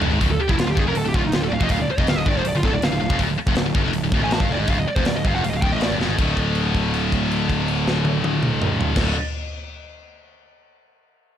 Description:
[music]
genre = heavy metal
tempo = 161 BPM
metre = 4/4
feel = straight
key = D phrygian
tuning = A4 = 439 Hz
[part]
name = scooped high-gain guitar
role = riff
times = 0.0-9.2 s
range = D2 to D3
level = -23 LUFS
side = left 1 dB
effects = distortion
[part]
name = fuzz picked electric bass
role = bass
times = 0.0-9.1 s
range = D1 to A1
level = -24 LUFS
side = equal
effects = overdrive
[part]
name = tight metal drum kit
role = drums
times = 0.0-9.1 s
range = crash cymbal, hi-hat, kick drum, snare drum, toms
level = -23 LUFS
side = equal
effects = none
[part]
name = high-gain lead guitar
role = melody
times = 0.3-5.9 s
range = Eb4 to A5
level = -26 LUFS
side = right 2 dB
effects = distortion
[sound]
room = studio reverb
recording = dark, warm production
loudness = -18 LUFS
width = side -10 dB against mid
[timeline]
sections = 0.2-6.2 A section; 6.2-9.2 B section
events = drum fill 0.0, 6.0; lead electric guitar solo 0.2-6.2; held note 6.2-9.0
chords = 0.2 Dm; 6.2 D5

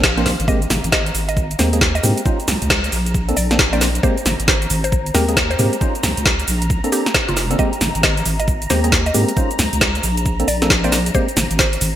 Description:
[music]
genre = UK garage, two-step garage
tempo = 135 BPM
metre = 4/4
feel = swing 63% on 16ths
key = Ab major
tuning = A4 = 440 Hz
[part]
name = soft string machine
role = sustained chords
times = 0.0-12.0 s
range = F5 to Bb5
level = -30 LUFS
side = equal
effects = phaser, ensemble chorus, sidechain pumping
[part]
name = percussive organ stab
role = stabs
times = 0.0-11.3 s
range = Ab3 to C5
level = -23 LUFS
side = equal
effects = chorus, digital delay
[part]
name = deep soft wobble bass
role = bass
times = 0.0-12.0 s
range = F1 to Ab2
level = -20 LUFS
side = equal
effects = chorus
[part]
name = electronic kick drum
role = drums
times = 0.0-11.7 s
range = none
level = -20 LUFS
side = equal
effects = overdrive
[part]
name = garage drum kit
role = drums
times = 0.0-11.9 s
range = cabasa, hi-hat, snare drum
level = -18 LUFS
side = equal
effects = overdrive, gated reverb
[part]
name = mallet-like synth pluck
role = melody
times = 0.5-11.8 s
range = F4 to Eb5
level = -26 LUFS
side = equal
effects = chorus, digital delay
[sound]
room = light reverb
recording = bright 1980s-style digital production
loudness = -15 LUFS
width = side -11 dB against mid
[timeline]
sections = 0.0-12.0 A section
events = none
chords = 0.5 Abmaj9; 2.3 Dbmaj9; 2.9 Bbmaj9; 4.0 Abmaj9; 5.8 Dbmaj9; 6.5 Bbmaj9; 7.6 Abmaj9; 9.4 Dbmaj9; 10.0 Bbmaj9; 11.1 Abmaj9

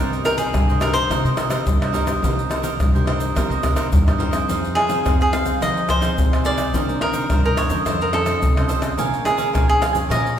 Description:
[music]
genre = samba and choro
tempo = 107 BPM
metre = 4/4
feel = straight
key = C minor, F minor from 4.5 s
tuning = A4 = 439 Hz
[part]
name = cavaquinho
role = melody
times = 0.0-10.4 s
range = Ab4 to F5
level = -22 LUFS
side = equal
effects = none
[part]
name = cavaquinho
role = accompaniment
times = 0.0-10.4 s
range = Eb4 to Ab5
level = -25 LUFS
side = right 4 dB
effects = none
[part]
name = nylon-string guitar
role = accompaniment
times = 0.0-10.4 s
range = G2 to C5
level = -26 LUFS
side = left 1 dB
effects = none
[part]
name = upright bass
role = bass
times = 0.0-10.4 s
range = Bb1 to F3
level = -25 LUFS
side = equal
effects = none
[part]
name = egg shaker, pandeiro, tamborim and surdo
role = percussion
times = 0.1-10.4 s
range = none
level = -21 LUFS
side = equal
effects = none
[sound]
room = wet recital hall reverb, RT60 1.6 s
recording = recorded in a church or concert hall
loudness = -17 LUFS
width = side -9 dB against mid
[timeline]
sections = 0.0-4.5 A section; 4.5-10.4 B section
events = none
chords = 0.0 Cm7; 4.5 Fm7; 6.7 Cm9; 7.9 F7b13; 9.0 Bbm9

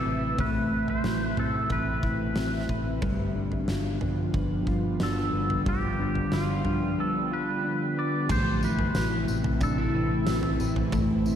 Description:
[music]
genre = dream pop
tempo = 91 BPM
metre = 4/4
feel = straight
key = A minor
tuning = A4 = 439 Hz
[part]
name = pedal steel guitar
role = melody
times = 0.0-10.6 s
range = F4 to D5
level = -32 LUFS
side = equal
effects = wide subtle chorus, ping-pong delay
[part]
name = ethereal airy pad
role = sustained chords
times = 0.0-11.4 s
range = C3 to E5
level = -31 LUFS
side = right 1 dB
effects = ensemble chorus, built-in reverb
[part]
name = clean electric guitar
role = arpeggios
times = 0.0-11.4 s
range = G3 to B4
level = -31 LUFS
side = left 3 dB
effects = analog chorus, ping-pong delay
[part]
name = vintage muted fingered electric bass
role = bass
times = 0.1-11.4 s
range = G1 to A2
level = -31 LUFS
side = equal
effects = none
[part]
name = huge arena drum kit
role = drums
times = 0.4-11.4 s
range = crash cymbal, kick drum, snare drum, tambourine, toms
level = -31 LUFS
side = equal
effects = none
[sound]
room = wet lush hall reverb, RT60 2.7 s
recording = dreamy mix soaked in reverb, vinyl crackle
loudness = -24 LUFS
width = side -9 dB against mid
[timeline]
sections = 0.0-8.3 A section; 8.3-11.4 B section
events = none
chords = 0.0 Amadd9; 3.0 G7; 8.3 Amadd9

